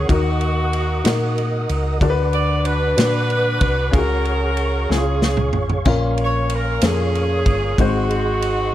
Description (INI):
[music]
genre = slow gospel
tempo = 62 BPM (dotted quarters)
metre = 6/8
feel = straight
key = unclear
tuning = A4 = 440 Hz
[part]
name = warm saxophone section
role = melody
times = 0.0-8.7 s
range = A#3 to D5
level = -22 LUFS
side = right 1 dB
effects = none
[part]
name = warm upright piano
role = accompaniment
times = 0.0-8.7 s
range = G#2 to B#4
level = -24 LUFS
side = left 4 dB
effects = none
[part]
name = mellow tonewheel organ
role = sustained chords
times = 0.0-8.7 s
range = G#4 to D#6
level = -28 LUFS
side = right 4 dB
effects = chorus vibrato, fast rotary speaker
[part]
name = hollow-body short-scale fingered electric bass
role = bass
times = 0.0-8.7 s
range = G1 to A#2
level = -21 LUFS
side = equal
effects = none
[part]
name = warm soul drum kit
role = drums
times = 0.1-8.6 s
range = kick drum, ride cymbal, snare drum, splash cymbal, toms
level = -22 LUFS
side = equal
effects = none
[sound]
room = light reverb, small room ambience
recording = none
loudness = -16 LUFS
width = side -13 dB against mid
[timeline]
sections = 0.0-8.7 A section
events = drum fill 4.9-5.9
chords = 0.1 D#m; 2.0 Bm/D; 3.9 C#sus4; 4.9 C#; 5.9 A#m; 7.8 G#7